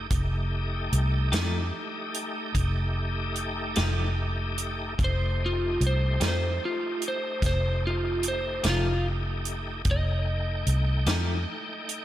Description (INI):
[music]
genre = slow blues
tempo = 49 BPM (dotted quarters)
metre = 12/8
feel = straight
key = F mixolydian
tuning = A4 = 440 Hz
[part]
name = bright tonewheel organ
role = sustained chords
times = 0.0-12.0 s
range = A3 to G5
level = -34 LUFS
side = equal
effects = slow rotary speaker, overdrive, chorus vibrato
[part]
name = vintage muted fingered electric bass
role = bass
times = 0.0-11.4 s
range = F1 to F2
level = -27 LUFS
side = equal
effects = none
[part]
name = warm soul drum kit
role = drums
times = 0.1-12.0 s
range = hi-hat, kick drum, snare drum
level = -30 LUFS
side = right 1 dB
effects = none
[part]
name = semi-hollow electric guitar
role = accompaniment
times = 1.3-11.3 s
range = F3 to G4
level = -34 LUFS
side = left 3 dB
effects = tremolo, slapback echo
[part]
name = electric slide guitar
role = melody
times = 5.0-12.0 s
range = F4 to Eb5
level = -30 LUFS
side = equal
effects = slapback echo
[sound]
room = light reverb, small room ambience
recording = none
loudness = -25 LUFS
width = side -13 dB against mid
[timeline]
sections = 0.0-12.0 A section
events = electric slide guitar solo 0.0-12.0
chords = 0.0 F9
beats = | 0.11 1.33 2.55 3.77 | 4.99 6.20 7.42 8.64 | 9.86 11.08